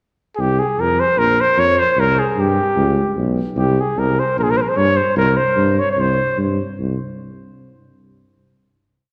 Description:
balkan folk, Balkan brass band; 150 BPM; 2/4; swing 56% on 16ths; A4 = 440 Hz
dark trumpet; melody; 0.4-6.4 s; G4 to Db5; -19 LUFS; equal
mellow tuba; bass; 0.4-7.0 s; Bb1 to G2; -21 LUFS; equal
wet concert hall reverb, RT60 2.3 s; heard from further back in the room; -17 LUFS; mono
0.0-0.4 pickup bar; 0.4-6.8 A section; 6.8-7.6 final note
0.4 Abmaj13/C; 1.2 Bb5; 2.0 C5; 2.8 Bsus2; 3.6 Abmaj9/C; 4.4 Bbm69; 5.2 C5; 6.8 N.C.
| 0.39 0.78 | 1.18 1.58 | 1.98 2.37 | 2.77 3.17 | 3.57 3.98 | 4.38 4.78 | 5.18 5.58 | 5.98 6.38 | 6.78

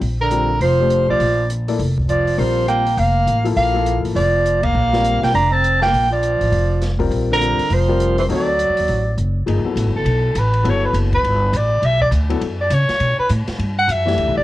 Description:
modal jazz; 203 BPM; 4/4; swing 62% on 8ths; Bb lydian, G lydian from 9.5 s; A4 = 440 Hz
upright bass; bass; 0.0-14.4 s; F1 to C#3; -19 LUFS; equal
open jazz drum kit; drums; 0.0-14.3 s; hi-hat, kick drum, ride cymbal, snare drum; -30 LUFS; equal; cassette tape
warm soprano saxophone; melody; 0.2-14.4 s; A4 to Bb5; -18 LUFS; equal
breathy tenor saxophone; second line; 0.2-9.1 s; D3 to D4; -24 LUFS; right 6 dB; cassette tape
warm grand piano; accompaniment; 0.3-14.4 s; E3 to D5; -23 LUFS; left 5 dB; cassette tape
light reverb, small room ambience; home recording on cassette; -15 LUFS; side -16 dB against mid
0.0-9.5 A section; 9.5-14.4 B section
band accent 4.6; soprano saxophone solo 9.5-14.4
0.0 Bb69; 8.3 D7b9; 9.5 Gmaj9
| 0.02 0.31 0.61 0.91 | 1.20 1.50 1.79 2.09 | 2.38 2.68 2.98 3.27 | 3.57 3.86 4.16 4.46 | 4.75 5.05 5.34 5.64 | 5.93 6.23 6.52 6.82 | 7.11 7.41 7.70 8.00 | 8.29 8.59 8.88 9.18 | 9.47 9.77 10.06 10.36 | 10.65 10.95 11.24 11.53 | 11.83 12.12 12.42 12.71 | 13.00 13.30 13.59 13.88 | 14.18

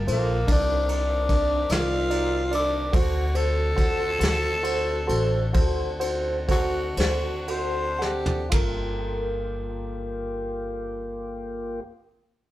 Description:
slow blues; 37-49 BPM (dotted quarters); 12/8; straight; G minor; A4 = 440 Hz
tonewheel organ; sustained chords; 0.0-11.8 s; Eb3 to A5; -35 LUFS; left 1 dB; slow rotary speaker
upright bass; bass; 0.0-11.8 s; G1 to D2; -28 LUFS; equal
growling tenor saxophone; melody; 0.1-8.5 s; Bb3 to C5; -26 LUFS; left 1 dB
barky tine electric piano; accompaniment; 0.1-11.8 s; D4 to F#5; -30 LUFS; right 1 dB; phaser
vintage brush drum kit; drums; 0.1-8.8 s; kick drum, ride cymbal, snare drum, toms; -28 LUFS; equal
light reverb; band playing live in one room; -22 LUFS; side -15 dB against mid
0.0-8.5 A section; 8.5-12.5 B section
tenor saxophone solo 0.0-8.5; slowing down 1.3-8.5; drum fill 8.0-8.5
0.5 Cm9; 2.9 D7; 8.5 Gm9
0.48 1.70 | 2.93 4.21 5.55 6.98 | 8.53 10.15 11.77

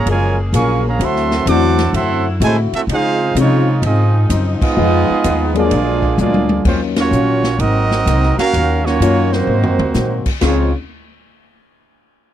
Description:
jazz, big band swing; 128 BPM; 4/4; swing 67% on 8ths; Db major; A4 = 445 Hz
clear trumpet section; melody; 0.0-10.7 s; Ab3 to D6; -18 LUFS; right 4 dB
dark trombone section; second line; 0.0-10.7 s; Db3 to Gb4; -20 LUFS; right 5 dB
mellow saxophone section; sustained chords; 0.0-6.6 s; Db3 to Ab4; -28 LUFS; left 2 dB
upright bass; bass; 0.0-10.7 s; Gb1 to Db3; -17 LUFS; equal
fingerpicked old ladder-braced acoustic guitar; accompaniment; 0.1-10.7 s; Ab2 to Ab4; -23 LUFS; left 7 dB
swinging big-band drum kit; drums; 0.1-10.6 s; china cymbal, crash cymbal, hi-hat, kick drum, ride cymbal, snare drum, toms; -23 LUFS; left 1 dB
dark baby grand piano; accompaniment; 1.5-10.7 s; F3 to F5; -19 LUFS; left 10 dB
little or no reverb; dry, close 1970s-style studio recording; -13 LUFS; side -11 dB against mid
0.0-6.7 A section; 6.7-10.4 B section; 10.4-12.3 C section
band accent 4.5, 6.9; drum fill 6.2-6.7, 9.5-9.9
0.0 Gbmaj9; 1.0 D9; 2.9 Dbmaj9; 4.8 Fm7b5; 5.7 Bb7b13; 6.7 Ebm9; 7.6 Ab9; 8.5 Ebm9; 9.5 Ab9; 10.4 Dbmaj9
0.06 0.53 | 1.00 1.47 1.94 2.42 | 2.89 3.36 3.83 4.30 | 4.77 5.24 5.71 6.18 | 6.65 7.12 7.59 8.06 | 8.53 9.01 9.48 9.95 | 10.42

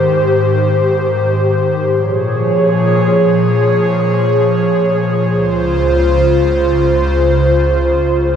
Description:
hip hop; free time; Bb dorian; A4 = 438 Hz
airy breathy pad; solo; 0.0-8.4 s; Db2 to Db5; -11 LUFS; equal; chorus
moderate lush hall reverb, RT60 2.2 s; dark, warm production; -11 LUFS; side -8 dB against mid
0.0-2.0 A section; 2.0-8.4 B section
0.0 Abmaj7; 2.0 Bbm7; 5.3 Dbmaj7
free time

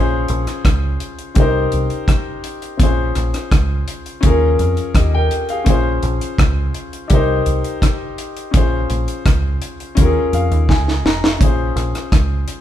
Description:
lovers rock reggae; 84 BPM; 4/4; straight; Bb dorian; A4 = 439 Hz
warm grand piano; accompaniment; 0.0-12.6 s; C4 to Bb5; -21 LUFS; left 3 dB
deep dub fingered electric bass; bass; 0.0-12.4 s; F1 to F2; -19 LUFS; equal
deep reggae drum kit; drums; 0.3-12.6 s; hi-hat, kick drum, rim click, snare drum; -17 LUFS; equal
moderate large studio reverb, RT60 1.0 s; band playing live in one room; -14 LUFS; side -11 dB against mid
0.0-12.6 A section
grand piano fill 10.0-11.4; drum fill 10.7-11.4
0.0 Bbm9; 1.4 Cm7; 2.8 Bbm9; 4.2 Eb9sus4; 5.7 Bbm9; 7.1 Cm7; 8.5 Bbm9; 10.0 Eb9sus4; 11.4 Bbm9
0.65 1.36 2.08 | 2.79 3.51 4.23 4.95 | 5.66 6.38 7.10 7.82 | 8.53 9.25 9.97 10.69 | 11.40 12.12

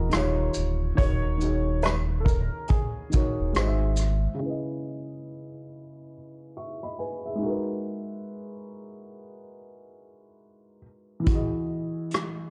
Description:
lo-fi hip hop; 70 BPM; 4/4; swing 62% on 16ths; C# dorian; A4 = 440 Hz
warm upright piano; melody; 0.0-3.9 s; G#4 to C#5; -37 LUFS; equal; low-pass filter, plate reverb
felt-muted upright piano; accompaniment; 0.0-12.5 s; C#3 to C#6; -33 LUFS; equal; low-pass filter, plate reverb
sub bass with octave; bass; 0.0-4.3 s; D1 to G#1; -28 LUFS; equal
vintage brush drum kit; drums; 0.1-4.2, 11.3-12.4 s; hi-hat, kick drum, rim click, shaker; -28 LUFS; equal
tambourine; percussion; 0.1-3.8 s; -53 LUFS; equal
light reverb; dark, warm production, nothing above 11.0 kHz; -27 LUFS; mono
0.0-4.4 A section; 4.4-12.5 B section
0.1 D#9; 1.0 G#7sus4/D#; 3.6 G#7b13; 4.4 C#m9; 7.4 G#m9; 11.3 Emaj7
0.12 | 0.98 1.84 2.70 3.55 | 4.41 5.27 6.12 6.98 | 7.84 8.70 9.55 10.41 | 11.27 12.12

